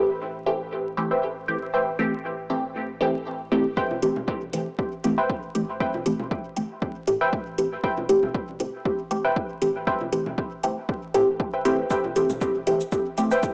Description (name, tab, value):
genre	dub techno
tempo	118 BPM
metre	4/4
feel	swing 54% on 16ths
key	A minor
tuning	A4 = 441 Hz
part	filtered dub chord stab	stabs	0.0-13.3 s	E3 to G4	-27 LUFS	equal	phaser, sidechain pumping, cassette tape, dub echo
part	soft dub sub bass	bass	0.0-13.5 s	E1 to A2	-46 LUFS	equal	sidechain pumping
part	filtered dub chord stab	riff	1.1-13.5 s	B4 to G5	-31 LUFS	equal	chorus, cassette tape, sidechain pumping, dub echo
part	electronic kick drum	drums	3.8-13.5 s	none	-33 LUFS	equal	overdrive
part	congas	percussion	3.9-12.6 s	none	-39 LUFS	equal	overdrive, sidechain pumping on perc, dub echo
part	electronic hi-hat and shaker	drums	4.0-13.5 s	none	-42 LUFS	equal	low-pass filter on hats, low-pass filter on perc
room	moderate spring reverb, RT60 1.9 s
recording	home recording on cassette, vinyl crackle, small speaker sound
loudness	-25 LUFS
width	mono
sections	0.0-3.8 A section; 3.8-13.5 B section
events	none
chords	0.0 Am7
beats	0.21 0.72 1.23 | 1.74 2.24 2.75 3.26 | 3.77 4.28 4.79 5.29 | 5.80 6.31 6.82 7.33 | 7.84 8.35 8.85 9.36 | 9.87 10.38 10.89 11.40 | 11.90 12.41 12.92 13.43